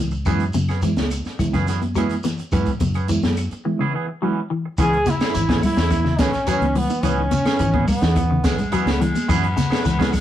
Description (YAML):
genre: afrobeat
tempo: 106 BPM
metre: 4/4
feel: straight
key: C# minor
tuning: A4 = 440 Hz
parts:
  - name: clean electric guitar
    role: arpeggios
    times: 0.0-10.0 s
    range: C#3 to F#3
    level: -25 LUFS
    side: left 4 dB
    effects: phaser
  - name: fingered electric bass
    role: bass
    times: 0.0-10.2 s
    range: G#1 to F#2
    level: -23 LUFS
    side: equal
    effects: none
  - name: twangy electric guitar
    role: stabs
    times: 0.1-10.2 s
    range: E3 to G#4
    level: -27 LUFS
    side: right 4 dB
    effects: none
  - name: shekere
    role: percussion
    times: 0.1-10.2 s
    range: none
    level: -31 LUFS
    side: equal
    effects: none
  - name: reed electric piano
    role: accompaniment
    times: 0.3-10.1 s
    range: E3 to E4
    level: -26 LUFS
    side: right 4 dB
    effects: fast tremolo
  - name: compact cocktail drum kit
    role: drums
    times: 0.3-10.2 s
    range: hi-hat, kick drum, snare drum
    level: -24 LUFS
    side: equal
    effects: none
  - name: claves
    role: percussion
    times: 0.3-10.2 s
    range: none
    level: -41 LUFS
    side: left 5 dB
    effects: none
  - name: congas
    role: percussion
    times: 0.3-10.2 s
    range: none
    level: -26 LUFS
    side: left 1 dB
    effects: none
  - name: brilliant trombone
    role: melody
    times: 4.8-8.7 s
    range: B3 to G#4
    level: -23 LUFS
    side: equal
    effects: none
  - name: bright alto saxophone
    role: second line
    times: 4.8-8.7 s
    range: B3 to G#4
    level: -31 LUFS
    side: right 2 dB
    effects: none
  - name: raspy baritone saxophone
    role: second line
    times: 8.4-10.2 s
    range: G#3 to B3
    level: -27 LUFS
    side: left 3 dB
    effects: none
room: moderate studio reverb, RT60 0.6 s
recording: rough rehearsal-room recording, warm saturation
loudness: -18 LUFS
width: side -11 dB against mid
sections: 0.0-4.8 A section; 4.8-10.2 B section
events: break 3.7-4.8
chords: 0.3 F#9sus4; 4.8 C#m7; 9.3 F#9sus4